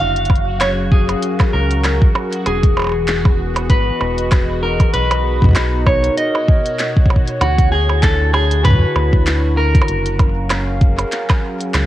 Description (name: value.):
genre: IDM.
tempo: 97 BPM.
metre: 4/4.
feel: swing 56% on 16ths.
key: unclear.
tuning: A4 = 439 Hz.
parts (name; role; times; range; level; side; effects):
clean electric guitar; melody; 0.0-11.7 s; F#4 to E#5; -20 LUFS; left 1 dB; spring reverb, cassette tape, tape echo.
hollow soft pad; sustained chords; 0.0-11.9 s; B2 to E#5; -23 LUFS; equal; chorus, vintage 12-bit sampler grit, cassette tape.
round analog bass; bass; 0.0-11.9 s; E1 to F#2; -19 LUFS; equal; none.
bubbling stepped-filter texture; texture; 0.0-11.9 s; F#4; -31 LUFS; right 4 dB; chorus, built-in reverb, cassette tape.
glitchy drum kit; drums; 0.2-11.9 s; handclaps, hi-hat, percussion blips; -22 LUFS; right 2 dB; cassette tape.
electronic kick drum; drums; 0.3-11.4 s; none; -13 LUFS; equal; cassette tape.
room: light reverb, digital ambience.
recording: home recording on cassette.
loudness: -13 LUFS.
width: side -14 dB against mid.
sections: 0.0-11.9 A section.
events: none.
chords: 0.0 F#maj9; 2.5 Emaj9; 4.9 Bmaj9; 7.4 Dmaj9; 9.9 F#maj9.